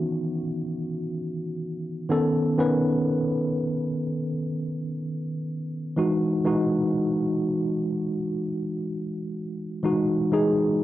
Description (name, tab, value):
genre	R&B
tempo	free time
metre	none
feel	none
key	E major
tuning	A4 = 439 Hz
part	mellow tine electric piano	solo	0.0-10.8 s	D#3 to B4	-24 LUFS	equal	medium stereo tremolo, cassette tape
room	moderate lush hall reverb, RT60 3.1 s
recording	home recording on cassette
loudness	-24 LUFS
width	side -14 dB against mid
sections	0.0-10.8 A section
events	none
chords	0.0 C#m11; 2.1 B9; 6.0 Emaj9